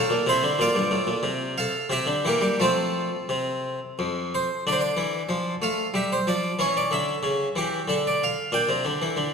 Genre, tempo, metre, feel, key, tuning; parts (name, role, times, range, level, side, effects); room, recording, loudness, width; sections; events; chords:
classical, baroque-style suite movement for harpsichord; 84-95 BPM; 3/4; rubato; F major, D minor from 4.7 s; A4 = 441 Hz
harpsichord; solo; 0.0-9.3 s; F2 to G5; -22 LUFS; equal
wet scoring stage reverb, RT60 2.0 s; -22 LUFS; side -6 dB against mid
0.0-4.7 A section; 4.7-9.3 A section
0.0 F/A; 0.6 Gm7; 1.2 F/C; 1.9 C7; 2.6 F; 4.7 Dm; 6.6 C#dim; 7.9 N.C.; 8.5 Gm/Bb